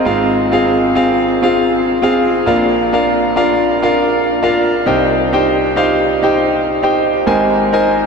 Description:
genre	pop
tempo	100 BPM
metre	4/4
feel	swing 55% on 16ths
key	C minor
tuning	A4 = 440 Hz
part	clear concert grand piano	solo	0.0-8.1 s	Ab1 to Ab5	-11 LUFS	equal	tape echo
room	wet huge ambient reverb, RT60 8.4 s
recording	dreamy mix soaked in reverb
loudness	-11 LUFS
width	side -5 dB against mid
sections	0.0-8.1 A section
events	none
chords	0.1 Fm/Ab; 2.5 Bb; 4.9 Cm; 7.3 Abadd9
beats	| 0.07 0.67 1.27 1.87 | 2.47 3.07 3.67 4.27 | 4.87 5.47 6.07 6.67 | 7.27 7.87

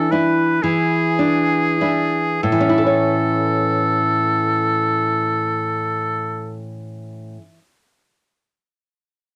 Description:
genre	romantic duo for oboe and classical guitar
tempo	30-40 BPM (dotted quarters)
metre	6/8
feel	rubato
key	A major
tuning	A4 = 440 Hz
part	clear oboe	melody	0.0-6.7 s	G#4 to B4	-22 LUFS	equal	cassette tape
part	nylon-string guitar	accompaniment	0.0-7.6 s	A2 to C#5	-22 LUFS	equal	cassette tape
room	wet booth ambience, RT60 0.2 s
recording	home recording on cassette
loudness	-18 LUFS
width	mono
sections	0.0-2.4 A section; 2.4-5.9 B section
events	slowing down 0.0-2.4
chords	0.0 E7(no3); 2.4 A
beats	0.63 | 2.44 4.16

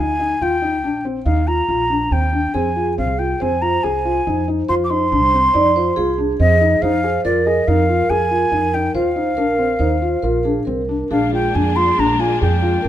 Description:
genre	contemporary instrumental, chamber music in an uneven meter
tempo	140 BPM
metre	5/4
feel	straight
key	unclear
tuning	A4 = 440 Hz
part	mellow silver concert flute	melody	0.0-12.9 s	D5 to D6	-19 LUFS	equal	none
part	felt-muted upright piano	arpeggios	0.0-12.9 s	C4 to Ab4	-20 LUFS	left 4 dB	none
part	upright bass	bass	0.0-12.9 s	G1 to F2	-22 LUFS	right 2 dB	none
part	vibraphone with soft mallets	second line	2.5-12.9 s	Ab4 to D5	-22 LUFS	right 5 dB	none
part	bright symphonic string section	sustained chords	11.1-12.9 s	Ab3 to D4	-26 LUFS	left 2 dB	none
room	light reverb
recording	close, detailed microphones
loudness	-15 LUFS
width	side -11 dB against mid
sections	0.0-11.1 A section; 11.1-12.9 B section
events	none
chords	0.4 Ebsus2; 2.5 Fm; 6.8 Bb7sus4/F; 8.9 Ebsus2; 11.1 Bb7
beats	| 0.40 0.83 1.25 1.68 2.11 | 2.55 2.98 3.41 3.84 4.27 | 4.69 5.12 5.55 5.97 6.39 | 6.82 7.25 7.67 8.09 8.52 | 8.95 9.37 9.80 10.23 10.67 | 11.11 11.54 11.98 12.41 12.84

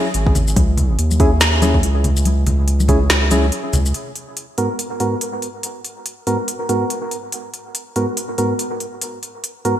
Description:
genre	deep dubstep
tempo	142 BPM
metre	4/4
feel	swing 58% on 16ths, half-time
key	G# minor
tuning	A4 = 441 Hz
part	percussive organ stab	stabs	0.0-9.8 s	G#2 to A#4	-22 LUFS	right 1 dB	chorus, dub echo
part	saturated sub bass	bass	0.1-3.9 s	G#1 to D#2	-16 LUFS	equal	none
part	deep house drum kit	drums	0.1-9.7 s	hi-hat, shaker, snare drum	-21 LUFS	equal	studio reverb, gated reverb
part	electronic kick drum	drums	0.3-3.0 s	none	-16 LUFS	equal	studio reverb
part	congas	percussion	0.4-3.8 s	none	-24 LUFS	left 1 dB	none
room	moderate lush hall reverb, RT60 1.7 s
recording	bright 1980s-style digital production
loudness	-16 LUFS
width	side -11 dB against mid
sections	0.0-3.9 A section; 3.9-9.8 B section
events	break 3.5-3.9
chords	0.0 C#m; 3.9 G#m7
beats	0.14 | 0.56 0.99 1.41 1.83 | 2.25 2.68 3.10 3.52 | 3.94 4.37 4.79 5.21 | 5.63 6.06 6.48 6.90 | 7.33 7.75 8.17 8.59 | 9.02 9.44

